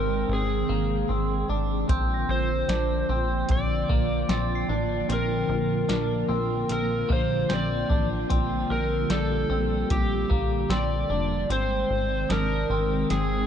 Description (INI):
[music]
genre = dream pop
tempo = 75 BPM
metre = 4/4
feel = straight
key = Bb major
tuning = A4 = 440 Hz
[part]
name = overdriven slide guitar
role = melody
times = 0.0-13.5 s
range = G4 to D5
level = -29 LUFS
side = equal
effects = ping-pong delay
[part]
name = string machine, cellos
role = sustained chords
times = 0.0-13.5 s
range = D3 to G5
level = -29 LUFS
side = equal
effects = ensemble chorus
[part]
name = clean electric guitar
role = arpeggios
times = 0.0-13.5 s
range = Bb3 to D4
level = -31 LUFS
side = equal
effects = wide subtle chorus, ping-pong delay
[part]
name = plucky analog bass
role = bass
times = 0.0-13.5 s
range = F1 to Bb1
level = -28 LUFS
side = equal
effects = none
[part]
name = soft vintage rhythm box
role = drums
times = 1.9-13.3 s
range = hi-hat, kick drum, snare drum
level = -27 LUFS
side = equal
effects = none
[part]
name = glockenspiel with rubber mallets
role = texture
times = 1.9-13.5 s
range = Eb6 to C7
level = -41 LUFS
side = right 2 dB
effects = stereo widening, ping-pong delay
[sound]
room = light reverb, digital ambience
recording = dark, warm production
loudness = -23 LUFS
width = side -8 dB against mid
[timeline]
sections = 0.0-13.5 A section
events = drum fill 13.1-13.5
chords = 0.0 Abmaj7; 1.9 Bbmaj7; 8.3 Gm7/Bb; 11.5 Abmaj7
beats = 0.30 1.10 | 1.90 2.70 3.50 4.30 | 5.10 5.90 6.70 7.50 | 8.30 9.10 9.90 10.70 | 11.50 12.30 13.10